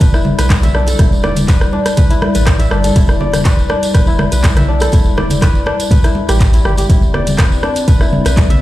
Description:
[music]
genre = afro house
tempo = 122 BPM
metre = 4/4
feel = straight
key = E minor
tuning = A4 = 438 Hz
[part]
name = dark analog pad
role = sustained chords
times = 0.0-8.6 s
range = G3 to D5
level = -20 LUFS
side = left 1 dB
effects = chorus, sidechain pumping
[part]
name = kora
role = arpeggios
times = 0.0-8.6 s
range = D4 to E5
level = -20 LUFS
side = left 1 dB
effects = sidechain pumping, dub echo
[part]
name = warm sub bass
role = bass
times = 0.0-8.6 s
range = E1 to B1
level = -16 LUFS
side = equal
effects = sidechain pumping
[part]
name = afro-pop drum kit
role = drums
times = 0.0-8.6 s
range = handclaps, hi-hat, rim click, toms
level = -19 LUFS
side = left 1 dB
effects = small room ambience
[part]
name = electronic kick drum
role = drums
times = 0.0-8.5 s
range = none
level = -11 LUFS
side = equal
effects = small room ambience
[part]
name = congas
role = percussion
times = 0.0-8.6 s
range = none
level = -21 LUFS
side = right 1 dB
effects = none
[part]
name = tambourine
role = percussion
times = 0.0-8.6 s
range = none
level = -28 LUFS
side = right 2 dB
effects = none
[sound]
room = little or no reverb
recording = played on a big sound system in a bare room, stone room reverb, lossy compression artefacts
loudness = -10 LUFS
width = side -15 dB against mid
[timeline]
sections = 0.0-8.6 A section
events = none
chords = 0.0 Em7; 6.9 Cadd9/E

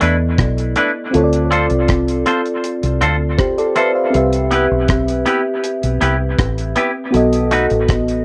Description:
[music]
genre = lovers rock reggae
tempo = 80 BPM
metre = 4/4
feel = straight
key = C major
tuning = A4 = 440 Hz
[part]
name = mellow FM electric piano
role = accompaniment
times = 0.0-8.2 s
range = B3 to F5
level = -20 LUFS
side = equal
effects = chorus, cassette tape, tape echo
[part]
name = semi-hollow electric guitar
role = stabs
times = 0.0-7.7 s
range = A3 to C5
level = -22 LUFS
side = equal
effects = cassette tape, tape echo
[part]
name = deep dub fingered electric bass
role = bass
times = 0.0-8.2 s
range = A1 to E2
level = -21 LUFS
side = equal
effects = none
[part]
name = deep reggae drum kit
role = drums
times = 0.0-8.2 s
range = hi-hat, kick drum, rim click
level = -22 LUFS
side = equal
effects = cassette tape
[sound]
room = light reverb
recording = home recording on cassette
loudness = -16 LUFS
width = mono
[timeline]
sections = 0.0-8.2 A section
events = none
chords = 0.0 E7sus4; 1.1 Dm7; 4.1 Cmaj7; 7.1 B7

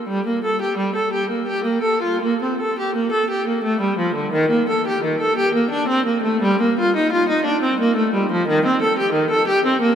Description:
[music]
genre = classical, baroque-style suite movement for unaccompanied viola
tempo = 86 BPM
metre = 3/4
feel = uneven beats, rubato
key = G minor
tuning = A4 = 440 Hz
[part]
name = rich viola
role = solo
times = 0.0-9.9 s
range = D3 to A4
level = -17 LUFS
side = equal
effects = none
[sound]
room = wet cathedral reverb, RT60 5.3 s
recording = in a vast, echoing space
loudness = -17 LUFS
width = side -8 dB against mid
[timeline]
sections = 0.1-9.9 A section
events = none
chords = none

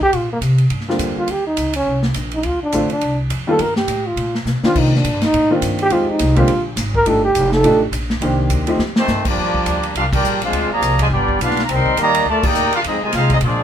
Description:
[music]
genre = jazz, big band swing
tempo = 208 BPM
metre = 4/4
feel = swing 59% on 8ths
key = Bb major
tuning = A4 = 440 Hz
[part]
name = breathy trombone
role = melody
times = 0.0-7.8 s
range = Bb3 to A#4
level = -17 LUFS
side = right 1 dB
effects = none
[part]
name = upright bass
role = bass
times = 0.0-13.6 s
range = F1 to C3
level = -20 LUFS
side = equal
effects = none
[part]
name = swinging big-band drum kit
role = drums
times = 0.0-13.5 s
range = crash cymbal, hi-hat, kick drum, ride cymbal, snare drum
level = -23 LUFS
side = equal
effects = none
[part]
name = warm upright piano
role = accompaniment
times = 0.9-8.8 s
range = D3 to G4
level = -19 LUFS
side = equal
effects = none
[part]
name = mellow trumpet section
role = melody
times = 9.0-13.6 s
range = A3 to C6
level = -18 LUFS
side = equal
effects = none
[part]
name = clear trombone section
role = second line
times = 9.0-13.6 s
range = C3 to G4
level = -21 LUFS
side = equal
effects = none
[sound]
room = moderate club reverb, RT60 0.5 s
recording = minimal, uncompressed stereo recording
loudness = -15 LUFS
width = side -9 dB against mid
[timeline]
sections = 0.1-9.4 A section; 9.4-13.6 B section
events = trombone solo 0.0-9.4; drum fill 4.5, 8.8; band accent 10.1, 12.4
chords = 0.1 Bb69; 1.3 Eb5; 2.4 Dm7; 3.6 G7#9; 4.8 Cm11; 5.9 Fm9; 6.5 Fmadd11; 7.1 Ebmaj9#11; 8.2 Cm9; 8.8 F9; 9.4 Bb6; 10.5 Dm7b5; 11.1 G7; 11.7 Cm9; 12.8 Fm7

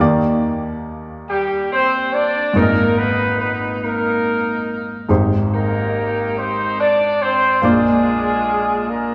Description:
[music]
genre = gospel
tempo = 47 BPM (dotted quarters)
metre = 6/8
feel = straight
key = Eb major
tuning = A4 = 440 Hz
[part]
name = warm baby grand piano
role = accompaniment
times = 0.0-9.1 s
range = Ab1 to Bb5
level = -21 LUFS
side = equal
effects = none
[part]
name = warm horn section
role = melody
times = 1.3-9.1 s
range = G3 to D5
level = -20 LUFS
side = equal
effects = none
[sound]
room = wet scoring stage reverb, RT60 1.9 s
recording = recorded in a church or concert hall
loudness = -18 LUFS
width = mono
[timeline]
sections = 0.0-9.1 A section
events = none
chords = 0.0 Ebmaj7; 2.5 Absus2; 5.1 Abmaj7; 7.6 Bb

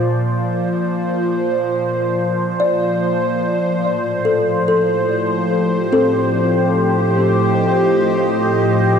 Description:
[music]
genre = ambient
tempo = free time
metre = none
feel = none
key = Bb major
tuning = A4 = 440 Hz
[part]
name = evolving wavetable pad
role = sustained chords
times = 0.0-9.0 s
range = A2 to Eb5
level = -16 LUFS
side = equal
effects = phaser, built-in reverb
[part]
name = kalimba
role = arpeggios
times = 2.6-9.0 s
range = C4 to D5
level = -19 LUFS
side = left 2 dB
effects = diffuse ambient delay
[sound]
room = wet huge ambient reverb, RT60 8.2 s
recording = none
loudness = -15 LUFS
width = side -7 dB against mid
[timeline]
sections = 0.0-9.0 A section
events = none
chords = 0.0 Bb; 3.4 F7/A

